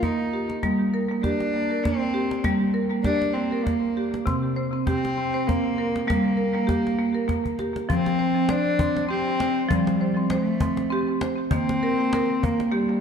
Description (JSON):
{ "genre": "world meditative, meditative tuned percussion", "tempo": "99 BPM", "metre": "3/4", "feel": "swing 56% on 16ths", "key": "unclear", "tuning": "A4 = 440 Hz", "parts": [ { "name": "warm cello", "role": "melody", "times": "0.0-13.0 s", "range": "G3 to Eb4", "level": "-26 LUFS", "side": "left 2 dB", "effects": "tape echo" }, { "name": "marimba with hard mallets", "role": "arpeggios", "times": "0.0-13.0 s", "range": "C3 to C5", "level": "-24 LUFS", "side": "right 1 dB", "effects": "tape echo" }, { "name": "cajon", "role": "percussion", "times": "0.0-12.7 s", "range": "none", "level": "-30 LUFS", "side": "left 1 dB", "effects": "none" } ], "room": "wet echo chamber reverb, RT60 1.9 s, small room ambience", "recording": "dark, warm production", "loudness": "-21 LUFS", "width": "side -7 dB against mid", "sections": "0.0-7.9 A section; 7.9-13.0 B section", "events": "drum fill 7.4-7.9", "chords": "0.0 Eb; 0.6 Gm; 4.3 C5; 6.1 Gm; 7.9 F; 11.5 Eb5" }